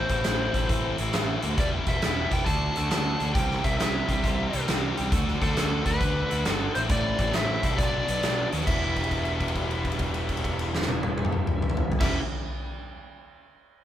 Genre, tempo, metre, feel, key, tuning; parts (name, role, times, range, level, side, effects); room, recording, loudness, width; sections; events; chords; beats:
blues rock power trio and southern rock; 135 BPM; 4/4; swing 66% on 8ths; E minor; A4 = 440 Hz
overdriven slide guitar; melody; 0.0-12.2 s; A4 to A5; -31 LUFS; left 1 dB
biting overdriven guitar; riff; 0.0-12.2 s; A2 to G4; -30 LUFS; left 1 dB
fuzz picked electric bass; bass; 0.0-12.2 s; E1 to D#2; -30 LUFS; equal; overdrive
huge arena drum kit; drums; 0.1-12.1 s; crash cymbal, hi-hat, kick drum, snare drum, toms; -28 LUFS; equal
light reverb; band playing live in one room; -23 LUFS; side -11 dB against mid
0.0-8.7 A section; 8.7-12.2 B section
held note 8.7-12.0
0.0 Am; 1.6 Em; 2.5 D; 3.4 C; 5.1 D; 6.7 Am; 7.8 Bm; 8.7 Em
0.25 0.69 1.14 | 1.58 2.02 2.47 2.91 | 3.35 3.79 4.24 4.68 | 5.12 5.57 6.01 6.45 | 6.90 7.34 7.78 8.23 | 8.67 9.11 9.56 10.00 | 10.45 10.89 11.33 11.78